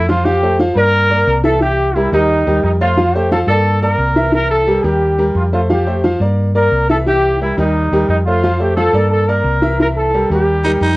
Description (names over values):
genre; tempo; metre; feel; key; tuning
latin; 176 BPM; 4/4; straight; F major; A4 = 443 Hz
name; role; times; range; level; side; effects
bright trombone section; melody; 0.0-11.0 s; Eb4 to Bb4; -15 LUFS; equal; none
clear grand piano; accompaniment; 0.0-10.9 s; E3 to F5; -17 LUFS; equal; none
hollow-body short-scale fingered electric bass; bass; 0.0-11.0 s; C2 to G2; -17 LUFS; equal; none
raspy baritone saxophone; second line; 10.6-11.0 s; Eb4; -16 LUFS; right 1 dB; slapback echo
room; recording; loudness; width
light reverb; worn, warbling old tape, cassette tape, warbly pitch drift; -12 LUFS; side -20 dB against mid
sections
0.2-11.0 A section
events
none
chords
0.2 Fadd9; 0.9 Gm; 1.6 C7; 2.3 Eb; 3.0 Fadd9; 3.7 Gm; 4.3 C7; 5.0 Eb; 5.7 Fadd9; 6.4 Gm; 7.1 C7; 7.7 Eb; 8.4 Fadd9; 9.1 Gm; 9.8 C7; 10.5 Eb